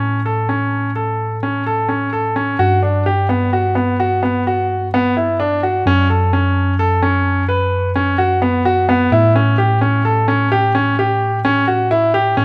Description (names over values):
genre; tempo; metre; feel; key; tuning
contemporary instrumental, chamber music in an uneven meter; 129 BPM; 7/4; straight; unclear; A4 = 440 Hz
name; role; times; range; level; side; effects
bright grand piano; arpeggios; 0.0-12.4 s; B3 to B4; -18 LUFS; equal; none
tine electric piano; bass; 0.0-12.4 s; F#2 to A2; -21 LUFS; equal; none
room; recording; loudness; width
light reverb; close, detailed microphones, faint mains hum; -16 LUFS; mono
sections
0.0-12.4 A section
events
none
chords
0.0 A; 2.6 Gmaj7; 5.9 F#sus4; 9.1 A7